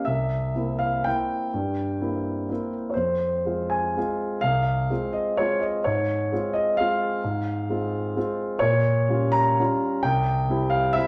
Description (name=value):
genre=classical, piano waltz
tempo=111-139 BPM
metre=3/4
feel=rubato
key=F minor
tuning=A4 = 440 Hz
part: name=warm concert grand piano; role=solo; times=0.0-11.1 s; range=C2 to Bb5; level=-24 LUFS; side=equal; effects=none
room=moderate large studio reverb, RT60 0.9 s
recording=heard from further back in the room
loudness=-25 LUFS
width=mono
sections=0.0-11.1 A section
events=none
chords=0.1 C7; 3.0 Fm; 5.9 Fm/Ab; 8.6 Gm7b5/Bb; 10.0 C